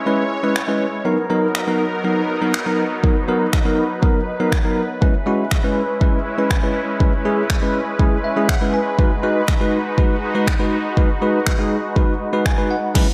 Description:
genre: dance-pop.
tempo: 121 BPM.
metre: 4/4.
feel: straight.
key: unclear.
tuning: A4 = 439 Hz.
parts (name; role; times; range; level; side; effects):
filtered supersaw swell; sustained chords; 0.0-13.1 s; F#3 to C#5; -26 LUFS; equal; sidechain pumping.
bell-like tine electric piano; accompaniment; 0.1-13.1 s; F#3 to G#5; -22 LUFS; equal; sidechain pumping, slapback echo.
deep house drum kit; drums; 0.6-13.1 s; crash cymbal, finger snaps, kick drum, snare drum; -21 LUFS; equal; none.
room: moderate lush hall reverb, RT60 1.7 s.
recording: big arena sound.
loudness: -19 LUFS.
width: mono.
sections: 0.0-13.0 A section.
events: tine electric piano fill 8.0-9.0, 12.2-13.0; drum fill 13.0.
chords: 0.0 C#m7; 1.1 Bmaj7; 5.0 C#m7; 9.0 B6.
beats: 0.06 0.56 | 1.05 1.55 2.04 2.54 | 3.04 3.53 4.03 4.53 | 5.02 5.52 6.01 6.51 | 7.00 7.50 8.00 8.49 | 8.99 9.48 9.98 10.47 | 10.97 11.47 11.96 12.46 | 12.95.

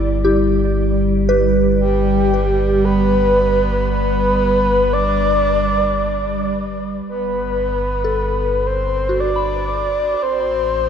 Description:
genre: ambient.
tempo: 57 BPM.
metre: 3/4.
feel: straight.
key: G major.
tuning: A4 = 440 Hz.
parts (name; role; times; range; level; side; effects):
soft synth bell; arpeggios; 0.0-10.9 s; E4 to B5; -21 LUFS; left 1 dB; chorus, phaser, ping-pong delay.
warm sub bass; bass; 0.0-10.9 s; G1 to A1; -22 LUFS; equal; none.
organ-like drone; drone; 0.0-7.2 s; G3; -21 LUFS; right 1 dB; ensemble chorus, built-in reverb.
breathy flute-like synth lead; melody; 1.8-10.9 s; G4 to D5; -18 LUFS; equal; wide subtle chorus, ping-pong delay.
room: wet plate reverb, RT60 3.8 s.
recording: dreamy mix soaked in reverb, nothing above 10.4 kHz.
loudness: -15 LUFS.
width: side -8 dB against mid.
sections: 0.0-7.1 A section; 7.1-10.9 B section.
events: none.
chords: 0.0 Em7/G; 7.1 Gadd9; 10.2 Am.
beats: | 0.76 1.80 2.85 | 3.89 4.94 6.00 | 7.07 8.13 9.18 | 10.22.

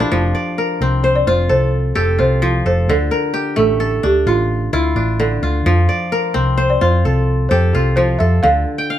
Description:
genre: west african traditional, West African string and xylophone music.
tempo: 86 BPM (dotted quarters).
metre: 12/8.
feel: straight.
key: F major.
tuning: A4 = 439 Hz.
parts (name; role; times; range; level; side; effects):
kora; arpeggios; 0.0-9.0 s; D3 to G5; -18 LUFS; left 1 dB; none.
hollow-body short-scale fingered electric bass; bass; 0.0-8.6 s; F1 to F2; -16 LUFS; equal; none.
balafon; melody; 1.0-9.0 s; F4 to F5; -18 LUFS; right 1 dB; none.
room: light reverb.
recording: band playing live in one room.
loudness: -13 LUFS.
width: side -11 dB against mid.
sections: 0.1-9.0 A section.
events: kora fill 8.8.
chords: 0.1 F; 2.9 Dm; 5.7 F; 8.4 Dm.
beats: | 0.11 0.81 1.50 2.19 | 2.88 3.57 4.27 4.96 | 5.66 6.35 7.04 7.74 | 8.43.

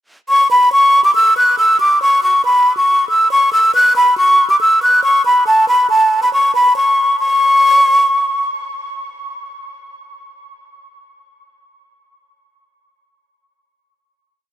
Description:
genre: hip hop.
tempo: 139 BPM.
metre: 4/4.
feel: half-time.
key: C# phrygian.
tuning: A4 = 440 Hz.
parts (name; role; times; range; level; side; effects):
breathy mellow jazz flute; solo; 0.3-8.5 s; A5 to F#6; -10 LUFS; equal; none.
room: light reverb.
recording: none.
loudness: -10 LUFS.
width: side -12 dB against mid.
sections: 0.3-7.2 hook; 7.2-10.7 final note.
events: none.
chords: none.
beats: | 0.29 0.72 1.15 1.58 | 2.02 2.45 2.88 3.31 | 3.74 4.17 4.61 5.04 | 5.47 5.90 6.33 6.76 | 7.20 7.63 8.06.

